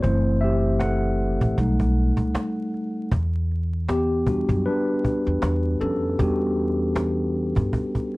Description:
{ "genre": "lo-fi hip hop", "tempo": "78 BPM", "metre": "4/4", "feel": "swing 57% on 16ths", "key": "E minor", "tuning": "A4 = 440 Hz", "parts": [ { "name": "mellow tine electric piano", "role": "accompaniment", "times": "0.0-8.2 s", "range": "E3 to F#5", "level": "-23 LUFS", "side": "equal", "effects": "fast stereo tremolo, cassette tape, low-pass filter" }, { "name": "upright bass", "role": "bass", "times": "0.0-7.7 s", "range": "F#1 to G2", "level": "-24 LUFS", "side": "equal", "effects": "none" }, { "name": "cajon", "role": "drums", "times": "0.0-8.2 s", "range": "none", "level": "-26 LUFS", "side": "equal", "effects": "vintage 12-bit sampler grit" } ], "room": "moderate studio reverb, RT60 0.5 s", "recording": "vinyl crackle", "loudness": "-20 LUFS", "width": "side -22 dB against mid", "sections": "0.0-8.2 A section", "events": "tine electric piano solo 0.0-8.2", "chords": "0.0 F#m7b5; 1.6 B7b13; 3.1 Em7" }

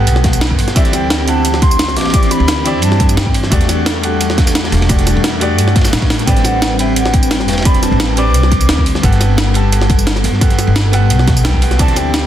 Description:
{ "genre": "liquid drum and bass", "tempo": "174 BPM", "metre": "4/4", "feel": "straight", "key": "unclear", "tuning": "A4 = 441 Hz", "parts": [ { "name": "clear baby grand piano", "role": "accompaniment", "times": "0.0-12.3 s", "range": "A3 to A5", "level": "-20 LUFS", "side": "right 1 dB", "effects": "ping-pong delay" }, { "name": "airy breathy pad", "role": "sustained chords", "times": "0.0-12.3 s", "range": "E3 to F#5", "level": "-20 LUFS", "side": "left 1 dB", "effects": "chorus, sidechain pumping" }, { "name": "upright bass", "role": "bass", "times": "0.0-12.3 s", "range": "E1 to A2", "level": "-15 LUFS", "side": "equal", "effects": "none" }, { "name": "breakbeat sampler-style drum kit", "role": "drums", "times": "0.1-12.2 s", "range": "hi-hat, snare drum, tambourine", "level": "-19 LUFS", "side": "right 1 dB", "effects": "none" }, { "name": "crunchy breakbeat drum kit", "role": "drums", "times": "0.1-12.2 s", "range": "ride cymbal, snare drum", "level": "-24 LUFS", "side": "equal", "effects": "high-pass filter on cymbals, high-pass filter on snare, high-pass filter on room" }, { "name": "electronic kick drum", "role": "drums", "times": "0.2-11.9 s", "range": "none", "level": "-13 LUFS", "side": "equal", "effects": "overdrive" }, { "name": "breathy mellow jazz flute", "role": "melody", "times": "0.8-3.4, 6.3-8.8, 11.8-12.3 s", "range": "E5 to D6", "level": "-20 LUFS", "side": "equal", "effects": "ping-pong delay" } ], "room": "light reverb, small room ambience", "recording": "dense, heavily limited modern master", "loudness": "-10 LUFS", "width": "side -11 dB against mid", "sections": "0.0-12.3 A section", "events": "drum fill 6.1", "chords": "0.0 Gmaj9; 0.8 D9sus4; 3.5 Em11; 6.3 Am11; 9.0 Gmaj9" }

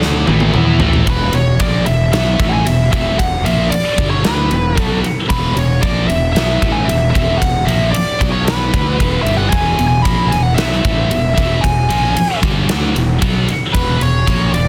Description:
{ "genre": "hard rock", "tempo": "114 BPM", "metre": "4/4", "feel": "straight", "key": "unclear", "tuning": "A4 = 440 Hz", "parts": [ { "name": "overdriven electric guitar", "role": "riff", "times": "0.0-1.1 s", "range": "A2 to E4", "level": "-25 LUFS", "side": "equal", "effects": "none" }, { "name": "scooped high-gain guitar", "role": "riff", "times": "0.0-14.7 s", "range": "E2 to E4", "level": "-23 LUFS", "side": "equal", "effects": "distortion" }, { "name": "scooped high-gain guitar", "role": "riff", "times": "0.0-14.7 s", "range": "E2 to E4", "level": "-25 LUFS", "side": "equal", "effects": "distortion" }, { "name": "fuzz fingered electric bass", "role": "bass", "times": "0.0-14.7 s", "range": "E1 to E2", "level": "-20 LUFS", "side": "equal", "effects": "overdrive" }, { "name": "huge arena drum kit", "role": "drums", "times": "0.0-14.7 s", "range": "kick drum, ride cymbal, snare drum, toms", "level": "-20 LUFS", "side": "equal", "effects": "none" }, { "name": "nasal lead guitar with a parked wah", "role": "melody", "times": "1.1-14.7 s", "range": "B4 to B5", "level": "-21 LUFS", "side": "equal", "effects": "overdrive" } ], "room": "studio reverb", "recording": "dense, heavily limited modern master", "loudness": "-15 LUFS", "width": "mono", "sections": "0.0-1.1 A section; 1.1-14.7 B section", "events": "drum fill 0.0-1.1", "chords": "0.3 A5; 1.1 E5; 8.2 B5; 8.7 E" }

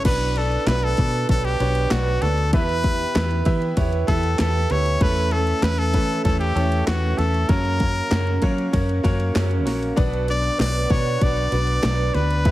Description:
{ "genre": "piano-driven pop", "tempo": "97 BPM", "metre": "4/4", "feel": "straight", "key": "B minor", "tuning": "A4 = 440 Hz", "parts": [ { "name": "brilliant trumpet", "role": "melody", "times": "0.0-12.5 s", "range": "F#4 to D5", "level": "-25 LUFS", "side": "left 1 dB", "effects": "plate reverb" }, { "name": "clear grand piano", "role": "accompaniment", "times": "0.0-12.5 s", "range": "B2 to E5", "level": "-27 LUFS", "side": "equal", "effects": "plate reverb" }, { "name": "muted studio string section", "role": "sustained chords", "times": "0.0, 10.0-12.5 s", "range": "B4 to E6", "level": "-39 LUFS", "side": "right 5 dB", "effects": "none" }, { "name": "fingerpicked steel-string acoustic guitar", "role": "riff", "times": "0.0-12.5 s", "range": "F#2 to B4", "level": "-29 LUFS", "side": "right 8 dB", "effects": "none" }, { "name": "house drum kit", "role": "drums", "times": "0.0-12.5 s", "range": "crash cymbal, handclaps, hi-hat, kick drum, ride cymbal, snare drum", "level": "-23 LUFS", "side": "equal", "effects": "none" }, { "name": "vintage muted fingered electric bass", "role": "bass", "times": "0.1-12.5 s", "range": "A#1 to F#3", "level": "-22 LUFS", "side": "equal", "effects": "none" } ], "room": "light reverb, studio reverb", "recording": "heavily compressed radio sound, multiband compression", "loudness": "-18 LUFS", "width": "side -15 dB against mid", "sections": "0.1-12.5 A section", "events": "none", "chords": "0.1 Bm; 2.5 Em; 5.0 A/E; 7.5 F#; 10.0 Bm" }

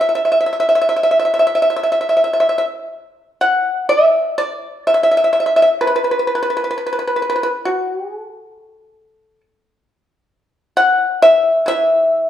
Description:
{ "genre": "chinese traditional, Chinese solo plucked strings", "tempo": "59-68 BPM", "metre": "4/4", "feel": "rubato", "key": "E shang mode", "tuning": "A4 = 438 Hz", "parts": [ { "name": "pipa", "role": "solo", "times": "0.0-12.3 s", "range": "E3 to F#5", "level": "-13 LUFS", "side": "equal", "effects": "none" } ], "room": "wet large studio reverb, RT60 1.3 s", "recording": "band playing live in one room", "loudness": "-13 LUFS", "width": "side -10 dB against mid", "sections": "0.0-3.9 A section; 3.9-12.3 B section", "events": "none", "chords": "none" }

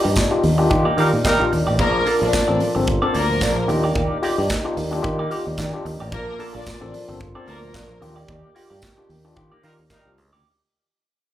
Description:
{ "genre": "disco", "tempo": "111 BPM", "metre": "4/4", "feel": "swing 56% on 16ths", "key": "unclear", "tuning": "A4 = 440 Hz", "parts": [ { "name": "overdriven tine electric piano", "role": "accompaniment", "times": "0.0-10.2 s", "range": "Bb2 to A4", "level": "-25 LUFS", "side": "left 3 dB", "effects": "medium tremolo, slapback echo" }, { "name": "semi-hollow electric guitar", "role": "accompaniment", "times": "0.0-10.5 s", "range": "Bb3 to D5", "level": "-27 LUFS", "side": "right 3 dB", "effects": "wah, slapback echo" }, { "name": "mellow French horn section", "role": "sustained chords", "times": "0.0-10.4 s", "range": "Bb2 to G4", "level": "-27 LUFS", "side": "equal", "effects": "none" }, { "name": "fingered electric bass", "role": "bass", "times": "0.0-10.4 s", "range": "G1 to Eb3", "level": "-23 LUFS", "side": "equal", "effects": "none" }, { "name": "modern studio drum kit", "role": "drums", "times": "0.2-10.3 s", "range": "handclaps, hi-hat, kick drum, snare drum", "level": "-26 LUFS", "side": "equal", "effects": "none" }, { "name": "tambourine", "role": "percussion", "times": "0.2-10.0 s", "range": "none", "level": "-34 LUFS", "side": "right 2 dB", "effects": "none" }, { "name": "dark horn section", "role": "stabs", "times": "1.0-1.4, 9.6-10.1 s", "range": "G3 to Bb4", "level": "-21 LUFS", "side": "right 2 dB", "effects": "slapback echo" }, { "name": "clear studio string section", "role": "second line", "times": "1.8-8.0 s", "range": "Bb3 to D5", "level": "-24 LUFS", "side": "left 1 dB", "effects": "slapback echo" } ], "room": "light reverb, small room ambience", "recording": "live gig heard through the venue's PA, club reverb", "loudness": "-17 LUFS", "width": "side -12 dB against mid", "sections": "0.0-10.4 A section", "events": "fade-out 0.0-10.4; band accent 0.0-1.8, 8.3-10.4", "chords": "0.0 Ebmaj7; 1.8 Bbmaj7; 3.7 Ebmaj7; 6.1 Bbmaj7; 8.0 Ebmaj7" }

